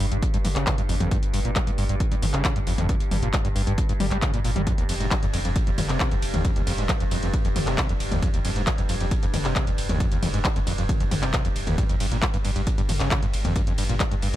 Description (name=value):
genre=driving peak-time techno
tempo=135 BPM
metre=4/4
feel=straight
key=unclear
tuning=A4 = 440 Hz
part: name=overdriven acid bass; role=riff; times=0.0-14.4 s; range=Eb2 to G3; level=-28 LUFS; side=equal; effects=distortion, analog chorus, sidechain pumping
part: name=saturated sub bass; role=bass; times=0.0-14.4 s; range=F1 to G1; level=-29 LUFS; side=equal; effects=tube saturation, sidechain pumping, low-pass filter
part: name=overtone-sweeping drone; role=drone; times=0.0-14.4 s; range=G2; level=-32 LUFS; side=equal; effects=chorus, built-in reverb, sidechain pumping
part: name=techno drum kit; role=drums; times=0.0-14.4 s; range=handclaps, hi-hat, ride cymbal, toms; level=-29 LUFS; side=left 1 dB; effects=none
part: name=electronic kick drum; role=drums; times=0.2-14.1 s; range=none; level=-25 LUFS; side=equal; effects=none
room=little or no reverb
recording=none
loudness=-21 LUFS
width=side -14 dB against mid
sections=0.0-14.4 A section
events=none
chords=none